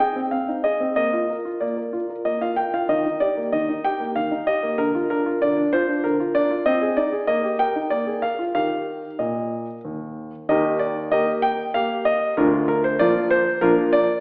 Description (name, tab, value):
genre	classical-period piano sonatina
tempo	95 BPM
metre	3/4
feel	straight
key	Eb major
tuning	A4 = 439 Hz
part	warm baby grand piano	solo	0.0-14.2 s	D2 to G5	-19 LUFS	equal	none
room	wet recital hall reverb, RT60 1.4 s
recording	heard from further back in the room, AM radio sound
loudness	-19 LUFS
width	side -30 dB against mid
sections	0.0-10.5 A section; 10.5-14.2 B section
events	none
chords	0.0 Ab/C; 1.0 Bb; 2.9 Eb; 4.8 Bbadd9/D; 6.7 Ab/C; 7.3 Eb/Bb; 7.9 Bb7; 8.6 Eb; 12.4 Bb/D